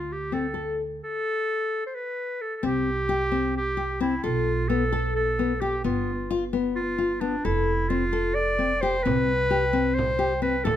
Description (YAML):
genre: contemporary instrumental, chamber music in an uneven meter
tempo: 262 BPM (eighths)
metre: 7/8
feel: straight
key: unclear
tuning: A4 = 440 Hz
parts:
  - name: clear clarinet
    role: melody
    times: 0.0-10.8 s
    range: D4 to D5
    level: -26 LUFS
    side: equal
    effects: none
  - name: nylon-string guitar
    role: arpeggios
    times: 0.0-10.8 s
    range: B3 to A4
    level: -27 LUFS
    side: left 4 dB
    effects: none
  - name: upright bass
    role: bass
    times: 0.0-10.8 s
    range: F1 to D2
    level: -30 LUFS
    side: right 4 dB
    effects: none
  - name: frame drum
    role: percussion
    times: 9.1-10.8 s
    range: none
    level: -31 LUFS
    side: right 5 dB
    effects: none
room: light reverb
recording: close, detailed microphones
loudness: -23 LUFS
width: side -11 dB against mid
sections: 0.0-2.6 A section; 2.6-10.8 B section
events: none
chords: 0.0 Dm7; 1.0 N.C.; 2.6 C5; 4.2 G9/B (rootless); 5.8 G7; 7.5 Fmaj7; 9.1 C5